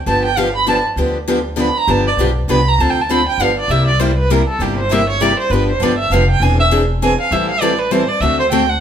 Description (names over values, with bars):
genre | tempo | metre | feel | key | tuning
acoustic string swing (jazz manouche) | 199 BPM | 3/4 | swing 58% on 8ths | G mixolydian | A4 = 441 Hz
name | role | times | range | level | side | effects
warm violin | melody | 0.1-8.8 s | G4 to B5 | -17 LUFS | right 2 dB | none
picked steel-string acoustic guitar | accompaniment | 0.1-8.6 s | C3 to A4 | -19 LUFS | left 5 dB | none
picked steel-string acoustic guitar | accompaniment | 0.1-8.6 s | C3 to B#4 | -22 LUFS | right 5 dB | none
upright bass | bass | 0.1-8.8 s | E1 to D2 | -18 LUFS | equal | none
room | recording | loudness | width
moderate stone room reverb, RT60 0.9 s | band playing live in one room | -13 LUFS | side -9 dB against mid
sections
0.1-8.8 A section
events
violin solo 0.0-8.8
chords
0.1 G7; 2.8 Dm7; 3.4 G7; 3.7 C7; 5.5 G7; 6.4 Eaug7; 7.3 Am7; 8.2 D7